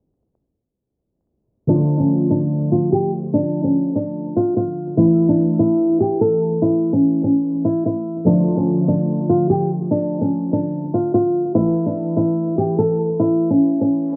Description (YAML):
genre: hip hop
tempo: 146 BPM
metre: 4/4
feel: half-time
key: D harmonic minor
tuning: A4 = 443 Hz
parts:
  - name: flamenco guitar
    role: melody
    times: 1.7-14.2 s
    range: C#4 to A4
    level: -20 LUFS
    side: equal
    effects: low-pass filter
  - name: glassy digital keys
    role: accompaniment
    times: 1.7-14.2 s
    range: D3 to F4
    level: -23 LUFS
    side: equal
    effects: chorus, low-pass filter, cassette tape
room: moderate booth ambience, RT60 0.2 s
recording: home recording on cassette, vinyl crackle, low-pass filter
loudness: -18 LUFS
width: mono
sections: 1.7-14.2 A section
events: none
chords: 1.7 Dm; 5.0 A; 8.3 Dm; 11.6 A